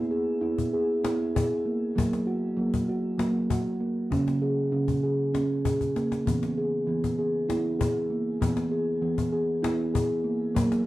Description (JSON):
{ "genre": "world meditative, meditative tuned percussion", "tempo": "196 BPM (eighths)", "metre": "7/8", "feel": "straight", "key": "E lydian", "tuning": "A4 = 440 Hz", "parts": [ { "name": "steel tongue drum", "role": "arpeggios", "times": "0.0-10.9 s", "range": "C#3 to G#4", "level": "-25 LUFS", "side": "right 1 dB", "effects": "shimmer reverb" }, { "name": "cajon", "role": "percussion", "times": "0.6-10.9 s", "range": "none", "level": "-30 LUFS", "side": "left 3 dB", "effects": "none" } ], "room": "wet studio reverb, RT60 0.6 s", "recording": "worn, warbling old tape, cassette tape, warbly pitch drift", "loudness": "-24 LUFS", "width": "side -16 dB against mid", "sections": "0.0-10.9 A section", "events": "drum fill 5.8-6.3", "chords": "0.0 E; 2.0 F#; 4.1 C#5; 6.3 E" }